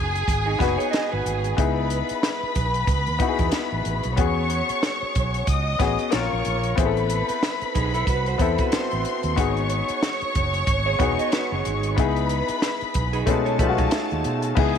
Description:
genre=lush 1970s-style soul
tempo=92 BPM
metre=4/4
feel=swing 58% on 16ths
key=unclear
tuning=A4 = 439 Hz
part: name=warm studio string section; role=second line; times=0.0-14.8 s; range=A3 to D#6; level=-26 LUFS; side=equal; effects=none
part: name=clear grand piano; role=accompaniment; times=0.0-14.8 s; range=G#3 to B4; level=-26 LUFS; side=left 11 dB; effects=none
part: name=fretless electric bass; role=bass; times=0.0-14.8 s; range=E1 to B2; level=-26 LUFS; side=right 2 dB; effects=none
part: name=compact cocktail drum kit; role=drums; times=0.2-14.8 s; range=crash cymbal, hi-hat, kick drum, snare drum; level=-25 LUFS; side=right 1 dB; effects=none
part: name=electric guitar through a small old amp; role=riff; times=0.5-1.6, 7.7-14.5 s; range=D#4 to D#5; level=-29 LUFS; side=right 13 dB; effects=none
room=light reverb, studio reverb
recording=1960s-style stereo with parts hard left and right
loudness=-20 LUFS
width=side -8 dB against mid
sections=0.0-14.6 A section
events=none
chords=0.0 G#m7; 1.6 C#m9; 6.1 A#m; 6.8 Amadd9; 9.4 G#m7; 12.0 C#m9; 13.3 B13

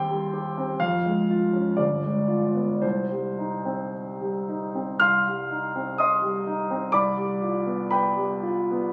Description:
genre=classical, romantic character piece for solo piano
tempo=53-64 BPM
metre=2/4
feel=rubato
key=C minor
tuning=A4 = 440 Hz
part: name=warm grand piano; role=solo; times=0.0-8.9 s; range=G1 to F6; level=-25 LUFS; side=equal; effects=none
room=wet recital hall reverb, RT60 1.7 s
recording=recorded on a phone in the room, studio ambience, compression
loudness=-25 LUFS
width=mono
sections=0.0-5.0 A section; 5.0-8.9 A section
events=none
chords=0.0 Cm/Eb; 0.8 Db/F; 1.8 G7b9; 2.8 Cm; 6.9 G7/C

